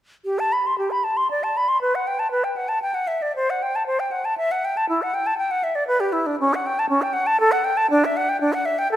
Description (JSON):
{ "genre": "classical, baroque-style fantasia for unaccompanied flute", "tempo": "118 BPM", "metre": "3/4", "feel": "rubato", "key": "G major", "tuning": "A4 = 441 Hz", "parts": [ { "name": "concert flute", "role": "solo", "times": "0.3-9.0 s", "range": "C#4 to C6", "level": "-19 LUFS", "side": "equal", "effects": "none" } ], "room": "moderate scoring stage reverb, RT60 1.5 s", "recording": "none", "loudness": "-19 LUFS", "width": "side -12 dB against mid", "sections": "0.2-9.0 A section", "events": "none", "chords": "none" }